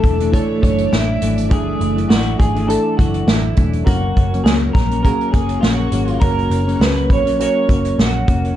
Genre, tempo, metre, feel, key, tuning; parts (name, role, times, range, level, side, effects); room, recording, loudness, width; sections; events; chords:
indie pop, bedroom pop; 102 BPM; 4/4; swing 55% on 16ths; A4 = 441 Hz
electric guitar through a small old amp; melody; 0.0-8.6 s; E4 to C#5; -22 LUFS; right 1 dB; lush chorus, tape echo
mellow electric guitar; accompaniment; 0.0-8.6 s; F#2 to D4; -22 LUFS; left 3 dB; lush chorus, warbly pitch drift
warm analog keys; accompaniment; 0.0-8.6 s; A3 to A#4; -24 LUFS; right 3 dB; chorus
string machine, cellos; sustained chords; 0.0-8.5 s; A3 to D6; -26 LUFS; right 1 dB; ensemble chorus
vintage muted picked electric bass; bass; 0.0-8.5 s; E1 to C#2; -20 LUFS; equal
unplugged drum kit; drums; 0.0-8.6 s; hi-hat, kick drum, snare drum; -17 LUFS; equal; vintage 12-bit sampler grit
moderate studio reverb, RT60 0.6 s; dark, warm production; -14 LUFS; side -12 dB against mid
0.0-8.6 A section
0.0 Dsus2; 3.9 F#